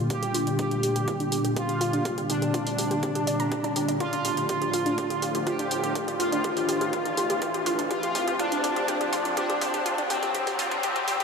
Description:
melodic techno; 123 BPM; 4/4; straight; A4 = 441 Hz
sweeping resonant pad; sustained chords; 0.0-11.2 s; A2 to G4; -30 LUFS; equal; wide subtle chorus, sidechain pumping
wide unison pluck; arpeggios; 0.0-11.2 s; D4 to Bb5; -30 LUFS; equal; sidechain pumping, ping-pong delay
round analog bass; bass; 0.0-11.2 s; F1 to D2; -44 LUFS; equal
riser; sound effects; 0.2-11.2 s; -36 LUFS; equal
analog synth brass; melody; 0.1-11.2 s; C4 to G4; -28 LUFS; left 1 dB; chorus, cassette tape, sidechain pumping, analog delay
electronic hi-hat; drums; 0.1-11.2 s; -35 LUFS; right 2 dB; sidechain pumping on hats
electronic kick drum; drums; 0.1-11.2 s; -38 LUFS; equal
wet huge ambient reverb, RT60 6.3 s; dreamy mix soaked in reverb, high-pass filter; -24 LUFS; side -5 dB against mid
0.0-11.2 A section
build-up 0.0-11.2; filter sweep on synth arpeggio sound 0.0-11.2; filter sweep 0.0-11.2; riser 0.2-11.2; drum fill 4.0-11.2
0.0 Gm; 4.0 Dm/G

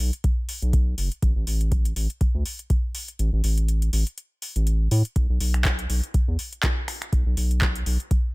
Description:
acid house; 122 BPM; 4/4; swing 56% on 16ths; B minor pentatonic; A4 = 440 Hz
round analog bass; bass; 0.0-8.0 s; F#1 to A2; -22 LUFS; equal; sidechain pumping
electro analog drum machine; drums; 0.1-8.2 s; finger snaps, handclaps, hi-hat; -30 LUFS; equal; overdrive
electronic kick drum; drums; 0.2-8.2 s; -22 LUFS; equal; overdrive
little or no reverb; -21 LUFS; side -24 dB against mid
0.0-8.3 A section
kick drops out 3.2-5.2

